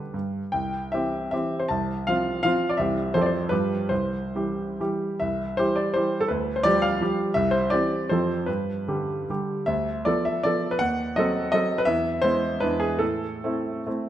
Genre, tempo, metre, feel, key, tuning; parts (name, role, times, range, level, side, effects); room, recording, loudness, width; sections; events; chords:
classical, romantic triple-time dance for piano with dotted rhythms; 130-178 BPM; 3/4; rubato; C major, A minor from 9.7 s; A4 = 440 Hz
clear baby grand piano; solo; 0.0-14.1 s; C2 to A5; -22 LUFS; equal
wet recital hall reverb, RT60 1.6 s; -22 LUFS; side -11 dB against mid
0.0-5.2 A section; 5.2-14.1 A section
0.0 G; 0.5 C; 1.7 F/C; 2.8 C; 3.1 F; 3.5 G7; 3.9 C; 6.3 G5/D; 7.4 C; 8.1 F; 8.5 G; 9.7 Bm7b5/D; 10.8 D#dim7; 11.9 E; 12.6 E7; 13.0 Am